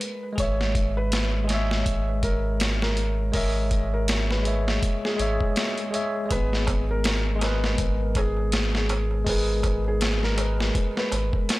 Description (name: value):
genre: trip hop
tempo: 81 BPM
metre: 4/4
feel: swing 57% on 16ths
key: G# minor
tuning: A4 = 442 Hz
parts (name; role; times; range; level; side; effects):
- felt-muted upright piano; melody; 0.0-11.6 s; G#4 to C#5; -32 LUFS; right 1 dB; tape echo
- bell-like tine electric piano; accompaniment; 0.0-11.6 s; G#3 to E5; -29 LUFS; left 1 dB; fast stereo tremolo, harmonic tremolo
- boom bap sampler-style drum kit; drums; 0.0-11.6 s; hi-hat, kick drum, snare drum; -26 LUFS; equal; none
- warm sub bass; bass; 0.4-11.3 s; G#1; -26 LUFS; equal; tube saturation
- darbuka; percussion; 6.3-11.6 s; none; -37 LUFS; right 3 dB; none
room: little or no reverb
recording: dry, gritty hardware recording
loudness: -22 LUFS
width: side -19 dB against mid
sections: 0.0-11.6 A section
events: none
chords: 0.4 C#m/G#; 6.3 G#madd9